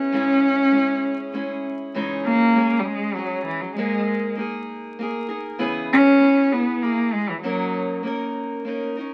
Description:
acoustic folk duo or small band; 98 BPM; 3/4; straight; C# dorian; A4 = 439 Hz
warm cello; melody; 0.0-8.0 s; E3 to C#4; -21 LUFS; equal
picked steel-string acoustic guitar; accompaniment; 0.0-9.1 s; G#2 to B4; -29 LUFS; equal
light reverb; very old 78 rpm record, vinyl crackle; -22 LUFS; mono
0.0-1.9 A section; 1.9-9.1 B section
cello solo 1.9-9.1
0.1 C#m; 1.9 C#madd9; 3.8 G#sus2; 5.6 E6; 7.4 F#6

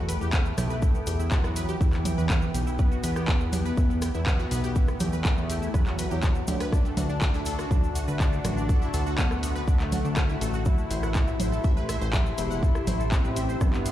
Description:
melodic techno; 122 BPM; 4/4; straight; E minor; A4 = 437 Hz
mellow synth brass; melody; 0.0-13.9 s; E3 to E4; -33 LUFS; left 1 dB; chorus, phaser, vintage 12-bit sampler grit, sidechain pumping, tape echo
evolving wavetable pad; sustained chords; 0.0-13.9 s; C3 to G5; -37 LUFS; equal; phaser, built-in reverb, sidechain pumping
wide unison pluck; arpeggios; 0.0-13.9 s; A3 to F#6; -37 LUFS; right 1 dB; phaser, sidechain pumping, tape echo
fat analog bass; bass; 0.0-13.9 s; E1 to E2; -29 LUFS; equal; sidechain pumping
impact; sound effects; 0.1-0.8 s; -49 LUFS; equal
punchy analog drum machine; drums; 0.1-13.9 s; congas, handclaps, hi-hat, rim click; -32 LUFS; right 1 dB; overdrive
cabasa; percussion; 0.1-13.9 s; -44 LUFS; right 4 dB
electronic kick drum; drums; 0.3-13.7 s; -23 LUFS; equal
ethereal airy pad; texture; 7.7-13.9 s; G4 to C6; -38 LUFS; left 2 dB; ensemble chorus, built-in reverb, sidechain pumping
little or no reverb; played on a big sound system in a bare room, large studio reverb; -23 LUFS; side -13 dB against mid
0.0-13.9 A section
impact 0.0-0.8
0.0 Em; 6.7 D; 10.7 Am

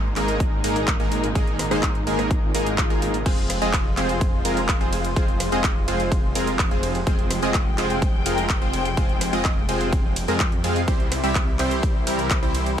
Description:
EDM, festival progressive house; 126 BPM; 4/4; straight; F minor; A4 = 440 Hz
muted studio string section; sustained chords; 0.0-12.8 s; Bb2 to G5; -30 LUFS; left 1 dB; sidechain pumping
supersaw stab; riff; 0.0-12.7 s; G3 to F5; -24 LUFS; right 1 dB; sidechain pumping, dub echo
wide detuned saw bass; bass; 0.0-12.8 s; F1 to F2; -28 LUFS; equal; chorus, sidechain pumping
big-room dance drum kit; drums; 0.2-12.8 s; crash cymbal, handclaps, hi-hat, ride cymbal, rim click; -29 LUFS; equal; overdrive
electronic kick drum; drums; 0.4-12.4 s; -22 LUFS; equal; overdrive
swell; sound effects; 2.4-3.3 s; -35 LUFS; left 1 dB
little or no reverb; dark, warm production; -19 LUFS; side -9 dB against mid
0.0-12.8 A section
swell 2.4-3.3
0.0 Absus2; 3.3 Fm; 10.9 C

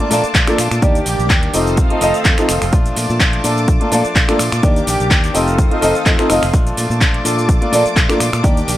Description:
filtered disco house; 126 BPM; 4/4; swing 54% on 16ths; Bb major; A4 = 441 Hz
dark grand piano; accompaniment; 0.0-8.6 s; Bb3 to Eb5; -17 LUFS; equal; phaser, vintage 12-bit sampler grit, sidechain pumping
string machine, full ensemble; sustained chords; 0.0-8.8 s; G4 to Eb6; -23 LUFS; equal; ensemble chorus, sidechain pumping
direct-recorded clean electric guitar; riff; 0.0-8.8 s; Eb3 to G4; -23 LUFS; left 1 dB; vintage 12-bit sampler grit, sidechain pumping
house drum kit; drums; 0.0-8.8 s; cabasa, finger snaps, handclaps, hi-hat; -19 LUFS; equal; sidechain pumping on hats, sidechain pumping on cymbals, sidechain pumping on perc
fingered electric bass; bass; 0.1-8.8 s; F1 to Bb2; -20 LUFS; equal; sidechain pumping
electronic kick drum; drums; 0.3-8.5 s; -14 LUFS; equal
little or no reverb; -12 LUFS; side -14 dB against mid
0.0-8.8 A section
0.0 Bbmaj7; 0.8 Ebmaj7; 1.5 F7; 2.7 Bbmaj7; 4.6 Ebmaj7; 5.3 F7; 6.5 Bbmaj7

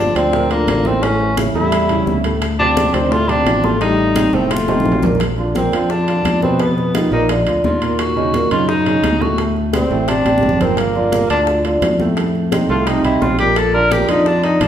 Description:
Afro-Cuban jazz; 172 BPM; 4/4; straight; Bb major from 5.2 s; A4 = 440 Hz
breathy tenor saxophone; melody; 0.0-14.7 s; Bb3 to Bb4; -18 LUFS; equal
breathy trombone; second line; 0.0-5.0 s; D3 to A3; -23 LUFS; left 4 dB
warm concert grand piano; accompaniment; 0.0-14.7 s; A2 to Cb5; -18 LUFS; right 2 dB
modern bright fingered electric bass; bass; 0.0-14.7 s; F1 to Gb2; -21 LUFS; left 1 dB
bongos; percussion; 0.2-14.7 s; -28 LUFS; left 4 dB
congas; percussion; 0.2-14.7 s; -24 LUFS; equal
timbales; percussion; 0.2-14.7 s; -27 LUFS; right 2 dB
wet large studio reverb, RT60 1.2 s; band playing live in one room; -13 LUFS; side -10 dB against mid
0.0-5.2 A section; 5.2-14.7 B section
drum fill 4.3-5.2, 10.3-10.8; tenor saxophone solo 5.2-14.7
0.0 Gm9 (rootless); 1.0 A7; 2.4 Dm7; 3.8 Am7b5; 4.5 F7; 5.2 Bb; 6.6 Bmaj7#11; 7.3 Bb; 8.0 Ebm7; 9.4 D5; 10.8 Gm7; 12.2 F7; 13.6 Bb

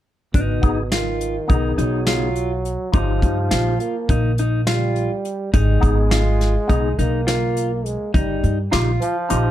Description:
progressive instrumental, band music in an uneven meter; 208 BPM (eighths); 9/8; straight; G# dorian; A4 = 440 Hz
breathy trombone; second line; 0.3-9.5 s; B2 to A#3; -25 LUFS; right 2 dB; ping-pong delay
mellow electric guitar; arpeggios; 0.3-9.5 s; D#4 to E#4; -24 LUFS; left 1 dB
upright bass; bass; 0.3-9.5 s; G1 to G2; -20 LUFS; equal
soft brush drum kit; drums; 0.3-9.4 s; hi-hat, kick drum, snare drum; -22 LUFS; equal
percussive tonewheel organ; accompaniment; 0.6-9.5 s; B3 to G#4; -25 LUFS; left 2 dB; fast rotary speaker
little or no reverb; dark, warm production; -17 LUFS; side -12 dB against mid
0.3-9.5 A section
0.3 G#m; 2.9 D#add9/G; 5.5 G#m; 8.1 D#add9/G

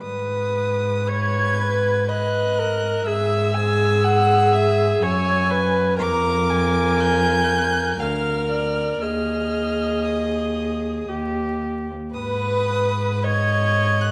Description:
classical, slow romantic movement for string quartet; 53-62 BPM; 3/4; rubato; G# minor; A4 = 440 Hz
dark violin; melody; 0.0-14.1 s; D6 to G#6; -30 LUFS; equal
warm viola; accompaniment; 0.0-14.1 s; G4 to C#5; -25 LUFS; equal
warm cello; bass; 0.0-14.1 s; D2 to G#2; -26 LUFS; equal
dark violin; second line; 1.1-14.1 s; B4 to A#5; -27 LUFS; equal
wet recital hall reverb, RT60 1.5 s; vinyl crackle; -21 LUFS; mono
0.0-14.1 A section
0.0 G#m; 3.1 C#m/G#; 6.0 A#7/E#; 9.0 G#5/D#; 11.1 D#; 12.1 G#m

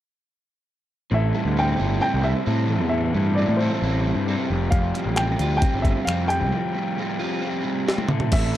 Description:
indie rock; 133 BPM; 4/4; straight; A minor; A4 = 442 Hz
warm upright piano; melody; 1.1-8.6 s; C5 to G5; -27 LUFS; equal; slapback echo, plate reverb
crunchy overdriven guitar; riff; 1.1-8.6 s; A2 to F4; -26 LUFS; right 5 dB; wide subtle chorus, slapback echo
raw garage guitar; riff; 1.1-8.6 s; G3 to A4; -29 LUFS; left 5 dB; overdrive
fuzz picked electric bass; bass; 1.1-8.5 s; F1 to A2; -23 LUFS; equal; overdrive
jungle sampler-style drum kit; drums; 4.7-8.4 s; crash cymbal, finger snaps, hi-hat, kick drum, snare drum, toms; -22 LUFS; equal
light reverb; dark, warm production; -20 LUFS; side -12 dB against mid
1.1-8.3 A section
break 6.5-8.3; drum fill 7.9-8.3
1.1 Am7; 4.5 Fsus2; 8.1 Am

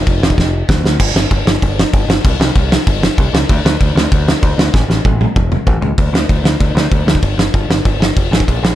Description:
punk rock; 193 BPM; 4/4; straight; A4 = 440 Hz
growling picked electric bass; bass; 0.0-8.7 s; E1 to D2; -16 LUFS; equal; overdrive
loose indie drum kit; drums; 0.1-8.7 s; crash cymbal, kick drum, snare drum, toms; -12 LUFS; equal
little or no reverb; -11 LUFS; side -13 dB against mid
1.0-6.0 A section; 6.0-8.8 B section
drum fill 0.4-1.0, 4.7-6.0

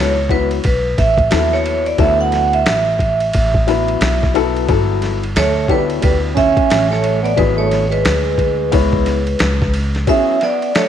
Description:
hip hop, jazz-hop; 89 BPM; 4/4; swing 63% on 16ths; F# minor; A4 = 440 Hz
vibraphone with hard mallets; melody; 0.0-10.9 s; B4 to F#5; -17 LUFS; right 2 dB
warm upright piano; accompaniment; 0.0-10.3 s; F#3 to C#5; -20 LUFS; left 13 dB
upright bass; bass; 0.0-10.0 s; G1 to D#2; -19 LUFS; equal
boom bap sampler-style drum kit; drums; 0.3-10.9 s; hi-hat, kick drum, ride cymbal, snare drum; -19 LUFS; equal
breathy trombone; second line; 5.4-10.8 s; G3 to C#4; -20 LUFS; right 10 dB
light reverb, small room ambience; 1960s-style stereo with parts hard left and right; -13 LUFS; side -9 dB against mid
0.0-10.1 A section
0.0 F#m11; 2.0 D69; 4.7 G69; 7.4 G#m7b5; 8.7 C#m7; 10.1 F#9sus4

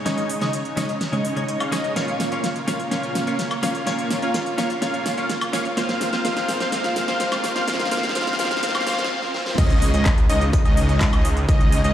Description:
EDM, festival progressive house; 126 BPM; 4/4; straight; Db major; A4 = 440 Hz
supersaw pad; sustained chords; 0.0-11.9 s; C3 to Db5; -31 LUFS; right 2 dB; sidechain pumping
direct-recorded clean electric guitar; accompaniment; 0.1-9.1 s; Bb2 to Db5; -29 LUFS; left 2 dB; wide subtle chorus, sidechain pumping, tape echo
wide unison lead; arpeggios; 0.1-11.9 s; Eb5 to F5; -27 LUFS; left 1 dB; analog chorus, vintage 12-bit sampler grit, sidechain pumping, tape echo
dense compressed supersaw; riff; 0.1-11.9 s; Ab3 to F5; -26 LUFS; right 1 dB; sidechain pumping, low-pass filter, tape echo
big-room dance drum kit; drums; 0.1-11.9 s; crash cymbal, handclaps, hi-hat, snare drum, woodblock; -27 LUFS; equal
riser, swell and impact; sound effects; 5.0-11.5 s; -33 LUFS; equal
wide detuned saw bass; bass; 9.6-11.9 s; Db2; -21 LUFS; equal; chorus, sidechain pumping
electronic kick drum; drums; 9.6-11.6 s; -18 LUFS; equal
moderate lush hall reverb, RT60 1.9 s; played on a big sound system in a bare room, large studio reverb, high-pass filter; -19 LUFS; side -11 dB against mid
0.0-9.6 A section; 9.6-11.9 B section
build-up 0.0-9.6; drum fill 0.0-9.1, 9.2-9.6; filter sweep on supersaw synth 0.0-9.6; filter sweep on analog synth lead 0.0-9.6; filter sweep 0.0-9.6; break 9.1-9.6; drop 9.6-11.9; impact 9.6-11.5
0.0 Dbsus2; 2.0 Bbm; 5.8 Fm; 9.6 Dbsus2

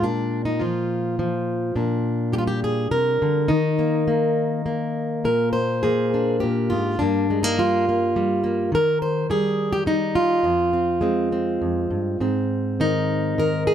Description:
folk, solo fingerstyle acoustic guitar; 104 BPM; 3/4; rubato; A4 = 439 Hz
fingerpicked plugged-in steel-string acoustic guitar; solo; 0.0-13.7 s; F2 to C5; -19 LUFS; equal
little or no reverb; close, detailed microphones; -19 LUFS; side -9 dB against mid
0.0-12.2 A section; 12.2-13.7 B section
0.0 Bb5; 1.8 Gm/Bb; 3.5 Eb5; 5.3 Bb; 7.0 Gm; 8.7 Eb; 10.4 Fm; 12.2 Ab

